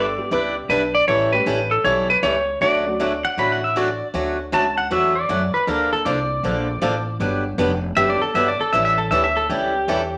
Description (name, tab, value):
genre	country, western swing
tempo	157 BPM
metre	4/4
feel	swing 66% on 8ths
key	D major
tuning	A4 = 440 Hz
part	clean lap steel guitar	melody	0.0-4.0 s	A4 to D5	-22 LUFS	equal	none
part	pedal steel guitar	second line	0.0-0.6, 3.2-10.2 s	G4 to B5	-22 LUFS	equal	none
part	picked swing-style acoustic guitar	accompaniment	0.0-10.0 s	D3 to B4	-25 LUFS	equal	none
part	upright bass	bass	0.0-10.2 s	F1 to F#2	-30 LUFS	equal	none
part	honky-tonk upright piano	accompaniment	0.2-3.0 s	F#3 to G4	-32 LUFS	equal	none
room	wet studio reverb, RT60 0.8 s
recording	none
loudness	-20 LUFS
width	mono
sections	0.0-4.1 A section; 4.1-10.2 B section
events	pedal steel guitar solo 4.1-10.2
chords	0.0 Em7/G; 1.1 A7; 2.6 Dmaj7; 5.7 Bbmaj7; 7.2 Gmaj7; 8.7 A7